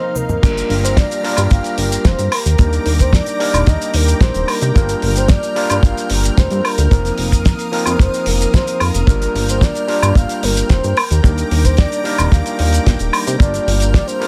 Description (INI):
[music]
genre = nu-disco, nu disco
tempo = 111 BPM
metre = 4/4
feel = straight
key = G minor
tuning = A4 = 441 Hz
[part]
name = soft octave-layered synth lead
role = melody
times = 0.0-14.3 s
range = Bb4 to F5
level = -24 LUFS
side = equal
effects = chorus, tremolo
[part]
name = overdriven tine electric piano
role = accompaniment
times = 0.0-14.3 s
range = F3 to Bb4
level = -25 LUFS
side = equal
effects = sidechain pumping
[part]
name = lush unison pad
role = sustained chords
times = 0.0-14.3 s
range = Eb4 to F6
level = -30 LUFS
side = equal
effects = chorus, sidechain pumping
[part]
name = chorused synth bass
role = bass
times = 0.4-14.0 s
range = Eb1 to C3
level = -19 LUFS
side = equal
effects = none
[part]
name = damped 70s drum kit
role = drums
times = 0.4-14.3 s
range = crash cymbal, hi-hat, shaker, snare drum, woodblock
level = -24 LUFS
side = equal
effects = small room ambience
[part]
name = kick drum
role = drums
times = 0.4-14.1 s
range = none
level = -14 LUFS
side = equal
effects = small room ambience
[sound]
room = small room ambience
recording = none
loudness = -15 LUFS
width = mono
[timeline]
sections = 0.4-14.3 A section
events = drop 0.4-14.3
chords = 0.4 Gm7; 2.3 Ebmaj7; 4.8 Gm7; 6.9 F7sus4; 9.1 Gm7; 11.0 Ebmaj7; 13.4 Gm7